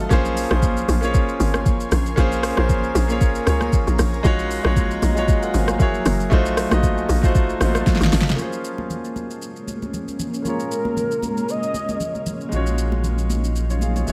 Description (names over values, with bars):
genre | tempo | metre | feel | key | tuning
amapiano | 116 BPM | 4/4 | swing 55% on 16ths | Bb minor | A4 = 440 Hz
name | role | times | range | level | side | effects
warm concert grand piano | accompaniment | 0.0-14.1 s | Gb3 to Ab5 | -26 LUFS | equal | none
granular cloud pad | sustained chords | 0.0-14.1 s | Gb3 to C6 | -33 LUFS | equal | built-in reverb
tight log drum bass | bass | 0.0-8.4 s | Gb1 to Db2 | -24 LUFS | equal | none
smooth R&B drum kit | drums | 0.1-14.1 s | hi-hat, kick drum, rim click, shaker, snare drum | -24 LUFS | equal | none
congas | percussion | 0.1-14.1 s | none | -32 LUFS | equal | none
warm velvety synth lead | melody | 10.5-12.3 s | Bb4 to Eb5 | -28 LUFS | equal | chorus, delay
warm sub bass | bass | 12.5-14.1 s | Gb1 to Bb1 | -23 LUFS | equal | none
room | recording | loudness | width
little or no reverb | none | -20 LUFS | mono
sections
0.0-8.4 A section; 8.4-14.1 B section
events
drop 0.0-8.4; drum fill 7.9-8.4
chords
0.1 Bbm9; 4.2 Ebm11/Bb; 5.8 Gb9; 6.3 F7b9/Bb; 8.4 Bbm9; 12.5 Ebm11/Bb